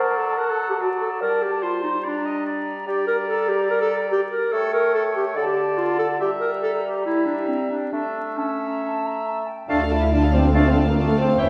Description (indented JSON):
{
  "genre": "quick classical-period movement for symphony orchestra",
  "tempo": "143 BPM",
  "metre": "4/4",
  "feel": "rubato",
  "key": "D minor",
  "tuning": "A4 = 441 Hz",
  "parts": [
    { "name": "clear oboe", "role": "second line", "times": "0.0-11.5 s", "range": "C5 to A5", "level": "-34 LUFS", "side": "equal", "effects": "none" },
    { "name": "mellow clarinet", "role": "second line", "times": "0.0-11.5 s", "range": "C4 to F5", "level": "-26 LUFS", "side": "equal", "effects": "none" },
    { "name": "mellow hollow flute section", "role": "second line", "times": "0.0-11.5 s", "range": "A4 to C6", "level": "-32 LUFS", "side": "equal", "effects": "none" },
    { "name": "warm bassoon", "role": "accompaniment", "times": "0.0-11.5 s", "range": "D3 to A3", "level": "-30 LUFS", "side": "equal", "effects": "none" },
    { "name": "warm studio violin section", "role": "melody", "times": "9.7-11.5 s", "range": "F5 to A5", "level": "-35 LUFS", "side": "equal", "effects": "none" },
    { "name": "rich studio violin section", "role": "second line", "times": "9.7-11.5 s", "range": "C#5 to F5", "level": "-35 LUFS", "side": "equal", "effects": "none" },
    { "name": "warm studio viola section", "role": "accompaniment", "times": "9.7-11.5 s", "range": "E4 to A4", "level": "-32 LUFS", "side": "equal", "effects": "none" },
    { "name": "clear French horn section", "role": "sustained chords", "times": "9.7-11.5 s", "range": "A3 to E4", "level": "-23 LUFS", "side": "equal", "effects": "none" },
    { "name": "dark studio cello section", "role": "bass", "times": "9.7-11.5 s", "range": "D2 to E2", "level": "-25 LUFS", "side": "equal", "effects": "none" },
    { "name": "rich studio double bass section", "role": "bass", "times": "9.7-11.5 s", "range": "E1 to D2", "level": "-25 LUFS", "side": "equal", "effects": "none" }
  ],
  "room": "wet recital hall reverb, RT60 1.6 s",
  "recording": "heard from further back in the room, vinyl crackle, nothing above 10.5 kHz",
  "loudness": "-22 LUFS",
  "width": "mono",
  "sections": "0.0-9.7 A section; 9.7-11.5 B section",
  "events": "none",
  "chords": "0.0 D/F#; 1.2 Gm; 4.5 A7; 5.4 D5; 6.2 Edim/G; 7.9 A; 9.7 Dm",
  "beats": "0.38 0.79 | 1.21 1.63 2.04 2.46 | 2.87 3.28 3.70 4.11 | 4.53 4.94 5.36 5.78 | 6.20 6.62 7.05 7.48 | 7.92 8.37 8.82 9.26 | 9.70 10.12 10.55 10.97 | 11.39"
}